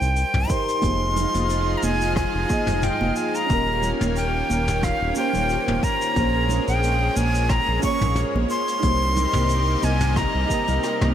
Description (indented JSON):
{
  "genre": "sunset chillout",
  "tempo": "90 BPM",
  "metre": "4/4",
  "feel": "swing 54% on 16ths",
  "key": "Bb dorian",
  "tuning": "A4 = 442 Hz",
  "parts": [
    { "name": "breathy bright jazz flute", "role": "melody", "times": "0.0-11.1 s", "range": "F5 to Db6", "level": "-24 LUFS", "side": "equal", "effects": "digital delay" },
    { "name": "soft electric-piano-like synth keys", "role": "accompaniment", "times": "0.0-11.1 s", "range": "G3 to Eb5", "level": "-28 LUFS", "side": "right 1 dB", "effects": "chorus, phaser, auto-pan" },
    { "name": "round analog bass", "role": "bass", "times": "0.0-11.1 s", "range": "Eb1 to C2", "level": "-24 LUFS", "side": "equal", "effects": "none" },
    { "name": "vintage brush drum kit", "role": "drums", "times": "0.0-11.1 s", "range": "hi-hat, rim click, shaker, toms", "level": "-31 LUFS", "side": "left 1 dB", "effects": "gated reverb" },
    { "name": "electronic kick drum", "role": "drums", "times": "0.5-10.6 s", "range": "none", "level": "-25 LUFS", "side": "equal", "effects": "overdrive" },
    { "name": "lush unison pad", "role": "sustained chords", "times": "0.8-11.1 s", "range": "C3 to F5", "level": "-28 LUFS", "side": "equal", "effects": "chorus" },
    { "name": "congas", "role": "percussion", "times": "0.8-11.1 s", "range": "none", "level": "-30 LUFS", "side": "right 2 dB", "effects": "none" }
  ],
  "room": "light reverb, small room ambience",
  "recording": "bright 1980s-style digital production",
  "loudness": "-19 LUFS",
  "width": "side -10 dB against mid",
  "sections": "0.0-11.1 A section",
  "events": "kick drops out 10.8-11.1; drum fill 10.8-11.1",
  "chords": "0.0 Cm7; 0.8 Fm7; 3.5 Eb7; 6.2 Bbm7; 8.8 Cm7",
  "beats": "0.17 | 0.83 1.50 2.17 2.83 | 3.50 4.17 4.83 5.50 | 6.17 6.83 7.50 8.16 | 8.83 9.50 10.16 10.83"
}